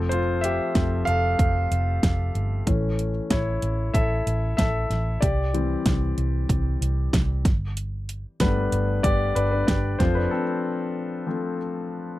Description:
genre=piano-driven pop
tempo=94 BPM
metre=4/4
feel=straight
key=unclear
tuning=A4 = 441 Hz
part: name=warm concert grand piano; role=accompaniment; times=0.0-12.2 s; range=E3 to F5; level=-26 LUFS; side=left 2 dB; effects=none
part: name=vintage muted picked electric bass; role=bass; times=0.0-10.3 s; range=F1 to C2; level=-25 LUFS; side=right 1 dB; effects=none
part: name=pop drum kit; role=drums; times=0.1-10.2 s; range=hi-hat, kick drum, snare drum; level=-23 LUFS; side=right 1 dB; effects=overdrive
room=little or no reverb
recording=dry, close 1970s-style studio recording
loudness=-21 LUFS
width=side -16 dB against mid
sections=0.0-12.2 A section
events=grand piano solo 0.0-12.2; break 10.3-12.2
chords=0.0 F; 2.7 A; 5.2 C; 7.5 Gadd9; 10.0 F

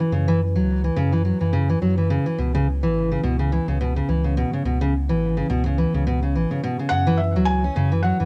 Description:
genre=folktronica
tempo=106 BPM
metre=4/4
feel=swing 56% on 16ths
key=C# minor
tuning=A4 = 440 Hz
part: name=fingerpicked steel-string acoustic guitar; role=arpeggios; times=0.0-8.3 s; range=B2 to C#4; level=-23 LUFS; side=equal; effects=vintage 12-bit sampler grit, analog delay
part: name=warm sub bass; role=bass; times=0.1-8.3 s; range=G#1 to F#2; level=-25 LUFS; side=equal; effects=tube saturation
part: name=felt-muted upright piano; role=melody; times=6.9-8.3 s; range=E5 to G#5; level=-27 LUFS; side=equal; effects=cassette tape
room=moderate booth ambience, RT60 0.2 s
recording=home recording on cassette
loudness=-21 LUFS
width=mono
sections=0.0-8.3 A section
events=none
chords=0.0 F#5; 2.4 C#m7; 6.9 F#5

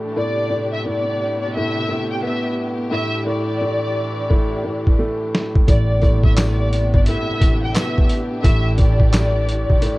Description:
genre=hip hop, boom-bap hip-hop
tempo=87 BPM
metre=4/4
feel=swing 63% on 16ths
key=A minor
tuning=A4 = 436 Hz
part: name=dark upright piano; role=accompaniment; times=0.0-10.0 s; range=A2 to B3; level=-23 LUFS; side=equal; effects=cassette tape, high-pass filter, low-pass filter
part: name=warm symphonic string section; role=sustained chords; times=0.0-10.0 s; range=C3 to G4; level=-30 LUFS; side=equal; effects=high-pass filter, low-pass filter
part: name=warm symphonic violin section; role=melody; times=0.2-10.0 s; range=D5 to G5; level=-24 LUFS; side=left 1 dB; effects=high-pass filter, low-pass filter
part: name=boom bap sampler-style drum kit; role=drums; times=4.3-10.0 s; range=handclaps, hi-hat, kick drum, snare drum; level=-16 LUFS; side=equal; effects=none
part: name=upright bass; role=bass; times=5.7-9.8 s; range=G1 to B1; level=-20 LUFS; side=equal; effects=none
part: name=tambourine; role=percussion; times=6.4-9.3 s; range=none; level=-38 LUFS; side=left 3 dB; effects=none
room=studio reverb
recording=worn, warbling old tape, cassette tape, warbly pitch drift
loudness=-16 LUFS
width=side -20 dB against mid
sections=0.0-10.0 A section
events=drum fill 4.3-5.7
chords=0.2 Am11; 2.9 Em7/A; 5.7 Am11; 8.4 Em7/A

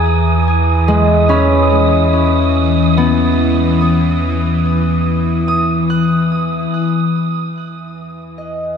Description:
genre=ambient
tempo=72 BPM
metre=4/4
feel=straight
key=E major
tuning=A4 = 441 Hz
part: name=concert harp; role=arpeggios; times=0.0-8.8 s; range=G#3 to F#6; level=-16 LUFS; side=left 1 dB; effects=ping-pong delay, shimmer reverb
part: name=round analog bass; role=bass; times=0.0-8.8 s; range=E2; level=-17 LUFS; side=right 2 dB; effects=none
part: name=bowed-like drone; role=drone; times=0.0-8.8 s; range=E3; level=-17 LUFS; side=left 3 dB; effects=built-in reverb, phaser
part: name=wind-like tuned noise texture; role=texture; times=0.0-6.7 s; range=D#6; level=-23 LUFS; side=right 5 dB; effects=built-in reverb, shimmer reverb
room=wet cathedral reverb, RT60 5.8 s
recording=in a vast, echoing space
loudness=-11 LUFS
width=side -7 dB against mid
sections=0.0-6.7 A section; 6.7-8.8 B section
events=none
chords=0.0 Emaj7

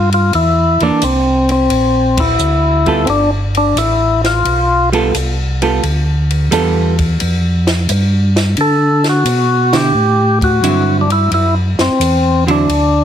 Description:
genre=soul jazz organ trio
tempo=88 BPM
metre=4/4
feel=swing 69% on 8ths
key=G mixolydian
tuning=A4 = 440 Hz
part: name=percussive tonewheel organ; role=melody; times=0.0-13.0 s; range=C4 to A4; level=-14 LUFS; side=left 2 dB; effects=slow rotary speaker
part: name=mellow tonewheel organ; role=bass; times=0.0-13.0 s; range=G1 to D3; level=-15 LUFS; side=equal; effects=chorus vibrato, slow rotary speaker
part: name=compact cocktail drum kit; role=drums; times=0.1-12.9 s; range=hi-hat, kick drum, ride cymbal, snare drum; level=-21 LUFS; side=left 1 dB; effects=none
part: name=vintage hollow-body jazz guitar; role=accompaniment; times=0.8-12.7 s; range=D3 to A4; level=-16 LUFS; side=right 4 dB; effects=none
room=light reverb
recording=heavily compressed radio sound, multiband compression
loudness=-11 LUFS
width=side -9 dB against mid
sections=0.0-13.0 A section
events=band accent 2.1-2.4, 9.6-9.9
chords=0.0 C9; 3.1 G9; 8.6 D9

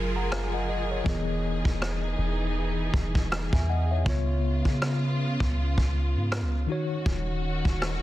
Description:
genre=contemporary R&B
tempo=80 BPM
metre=4/4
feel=swing 58% on 16ths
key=unclear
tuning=A4 = 439 Hz
part: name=mellow tine electric piano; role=accompaniment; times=0.0-8.0 s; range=C#3 to A#5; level=-32 LUFS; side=left 3 dB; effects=medium stereo tremolo
part: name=warm studio string section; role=sustained chords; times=0.0-8.0 s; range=C#3 to A#4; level=-33 LUFS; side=right 2 dB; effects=none
part: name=warm 808-style bass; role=bass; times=0.0-8.0 s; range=D#1 to C#3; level=-28 LUFS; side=equal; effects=none
part: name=downlifter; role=sound effects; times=0.0-4.1 s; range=none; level=-43 LUFS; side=equal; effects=none
part: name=vintage brush drum kit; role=drums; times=0.3-8.0 s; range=kick drum, rim click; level=-28 LUFS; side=equal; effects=soft clipping on snare
room=small room ambience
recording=dense, heavily limited modern master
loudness=-24 LUFS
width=side -15 dB against mid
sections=0.0-8.0 A section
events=none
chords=0.0 F#maj9; 1.1 Emaj7; 4.1 C#7; 6.7 D#m7

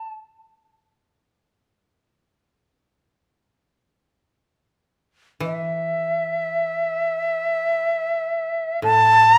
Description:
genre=japanese traditional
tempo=free time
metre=none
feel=none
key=unclear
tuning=A4 = 440 Hz
part: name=bright reedy shakuhachi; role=melody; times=0.0-9.4 s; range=E5 to A5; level=-20 LUFS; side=equal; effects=none
part: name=koto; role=accompaniment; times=5.4-9.4 s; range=A2 to E3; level=-32 LUFS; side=equal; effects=none
room=light reverb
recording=none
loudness=-22 LUFS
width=mono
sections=0.0-9.4 A section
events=slowing down 5.5-9.4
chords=none

